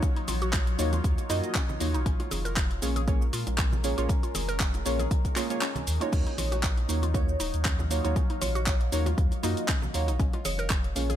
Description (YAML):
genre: deep house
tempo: 118 BPM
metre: 4/4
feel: swing 55% on 16ths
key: Eb minor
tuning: A4 = 440 Hz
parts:
  - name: deep dark ambient pad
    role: sustained chords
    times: 0.0-11.2 s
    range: Gb3 to F5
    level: -38 LUFS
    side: left 1 dB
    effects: chorus, built-in reverb, sidechain pumping
  - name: mallet-like synth pluck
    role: arpeggios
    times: 0.0-11.2 s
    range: Db4 to Bb4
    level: -38 LUFS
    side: left 1 dB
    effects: chorus, sidechain pumping, digital delay
  - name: deep mellow chord stab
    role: stabs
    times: 0.0-11.1 s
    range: Bb3 to Eb5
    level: -33 LUFS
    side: right 2 dB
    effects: chorus, vintage 12-bit sampler grit, sidechain pumping, digital delay
  - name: deep house drum kit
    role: drums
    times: 0.0-11.2 s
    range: crash cymbal, handclaps, hi-hat, shaker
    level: -33 LUFS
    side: equal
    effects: none
  - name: electronic kick drum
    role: drums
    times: 0.0-10.8 s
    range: none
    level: -27 LUFS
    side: equal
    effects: none
  - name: sub bass with octave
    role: bass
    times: 0.3-11.2 s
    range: Eb1 to Bb2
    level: -29 LUFS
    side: equal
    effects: sidechain pumping
  - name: bongos and congas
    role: percussion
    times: 0.3-11.2 s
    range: none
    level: -40 LUFS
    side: right 3 dB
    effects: none
  - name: vibraphone with medium mallets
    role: melody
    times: 6.4-10.6 s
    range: Db5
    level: -37 LUFS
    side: right 1 dB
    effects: digital delay
room: little or no reverb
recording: none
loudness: -25 LUFS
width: side -11 dB against mid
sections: 0.0-11.2 A section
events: kick drops out 5.6-6.1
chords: 0.0 Ebm9; 2.1 Bbm7; 6.1 Ebm9; 10.2 Bbm7